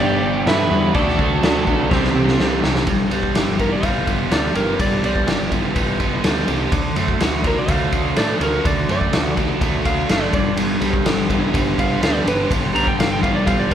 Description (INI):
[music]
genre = classic rock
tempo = 124 BPM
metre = 4/4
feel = straight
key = G major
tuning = A4 = 440 Hz
[part]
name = electric slide guitar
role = melody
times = 0.0-13.7 s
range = G4 to Bb5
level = -24 LUFS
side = equal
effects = none
[part]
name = octave-fuzz lead guitar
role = second line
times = 0.0-2.6 s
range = C4 to B4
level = -25 LUFS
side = right 3 dB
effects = distortion
[part]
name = biting overdriven guitar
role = riff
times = 0.0-13.7 s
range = G2 to G4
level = -23 LUFS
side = right 8 dB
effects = none
[part]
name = crunchy overdriven guitar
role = riff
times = 0.0-2.9, 10.6-13.7 s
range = G2 to D4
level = -25 LUFS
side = equal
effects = none
[part]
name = sludgy distorted guitar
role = riff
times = 0.0-13.7 s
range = G2 to B4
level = -25 LUFS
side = left 8 dB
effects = overdrive
[part]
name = growling picked electric bass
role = bass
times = 0.0-13.7 s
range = F#1 to A2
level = -25 LUFS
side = equal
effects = overdrive
[part]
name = raw garage drum kit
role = drums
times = 0.5-13.7 s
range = crash cymbal, kick drum, ride cymbal, snare drum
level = -20 LUFS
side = equal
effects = none
[sound]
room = moderate large studio reverb, RT60 1.1 s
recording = band playing live in one room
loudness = -16 LUFS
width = side -9 dB against mid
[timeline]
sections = 0.0-2.9 A section; 2.9-13.7 B section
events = drum fill 1.9-2.9; electric slide guitar solo 2.9-13.7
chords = 0.0 G; 0.9 D; 1.9 C; 2.9 G6; 6.7 D; 10.3 G6